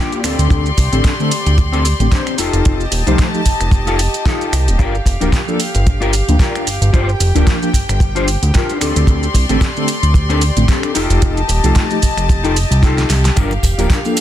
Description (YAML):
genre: nu-disco, nu disco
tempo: 112 BPM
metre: 4/4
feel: swing 56% on 16ths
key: G minor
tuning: A4 = 440 Hz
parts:
  - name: rich studio string section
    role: sustained chords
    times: 0.0-14.2 s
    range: G4 to C6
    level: -22 LUFS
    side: left 2 dB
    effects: sidechain pumping
  - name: mellow electric guitar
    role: riff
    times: 0.0-14.2 s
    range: Bb3 to G5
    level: -21 LUFS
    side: left 3 dB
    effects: ensemble chorus, dub echo
  - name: pop drum kit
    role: drums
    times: 0.1-14.2 s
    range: finger snaps, hi-hat, shaker, snare drum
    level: -22 LUFS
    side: right 2 dB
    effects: studio reverb
  - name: fat analog bass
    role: bass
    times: 0.2-13.9 s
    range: D1 to D2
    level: -15 LUFS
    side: equal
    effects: sidechain pumping
  - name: kick drum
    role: drums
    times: 0.5-14.0 s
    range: none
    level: -14 LUFS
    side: equal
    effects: studio reverb, soft clipping on snare
  - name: mellow synth brass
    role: accompaniment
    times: 0.9-14.2 s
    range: D3 to A4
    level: -21 LUFS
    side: equal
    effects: chorus, sidechain pumping, dub echo
  - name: congas and tambourine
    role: percussion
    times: 13.4-14.2 s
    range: none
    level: -28 LUFS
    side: right 5 dB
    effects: none
room: small room ambience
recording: dense, heavily limited modern master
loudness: -12 LUFS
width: side -12 dB against mid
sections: 0.0-14.2 A section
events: clean electric guitar fill 0.0-0.5; drum fill 12.8-13.4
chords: 0.2 D7sus4; 2.4 F9; 4.8 Gm7; 8.8 D7sus4; 11.0 F9; 13.4 Gm7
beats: | 0.51 1.04 1.58 2.12 | 2.65 3.19 3.72 4.26 | 4.79 5.33 5.87 6.40 | 6.94 7.47 8.01 8.54 | 9.08 9.62 10.15 10.69 | 11.22 11.76 12.29 12.83 | 13.37 13.90